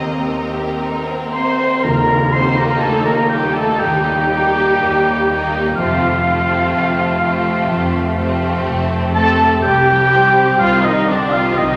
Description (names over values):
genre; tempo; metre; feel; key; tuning
cinematic, emotional film score for orchestra; 62 BPM; 4/4; rubato; Eb lydian; A4 = 439 Hz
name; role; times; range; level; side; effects
warm studio violin section; melody; 0.0-11.8 s; G4 to Eb5; -32 LUFS; equal; none
rich symphonic violin section; second line; 0.0-11.8 s; A3 to Bb4; -25 LUFS; equal; none
warm symphonic viola section; accompaniment; 0.0-11.8 s; Bb3 to C5; -23 LUFS; equal; none
mellow French horn section; sustained chords; 0.0-11.8 s; D3 to G4; -27 LUFS; equal; none
concert harp; arpeggios; 0.0-11.8 s; C3 to C5; -28 LUFS; equal; none
rich symphonic cello section; bass; 0.0-11.8 s; C2 to F2; -29 LUFS; equal; none
rich symphonic double bass section; bass; 0.0-11.8 s; F1 to Eb2; -27 LUFS; equal; none
bright concert flute; second line; 1.3-11.8 s; D5 to C6; -24 LUFS; equal; none
warm oboe; second line; 1.3-11.8 s; D5 to C6; -21 LUFS; equal; none
tam-tam; percussion; 1.8-5.7 s; none; -26 LUFS; equal; none
room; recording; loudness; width
wet scoring stage reverb, RT60 1.8 s; none; -16 LUFS; mono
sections
0.0-1.8 A section; 1.8-11.8 B section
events
band accent 1.8-2.8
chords
0.0 Eb6; 1.8 Eb; 5.8 Fadd9; 9.6 Cm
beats
0.79 | 1.84 2.83 3.82 4.81 | 5.77 6.74 7.70 8.66 | 9.63 10.59 11.56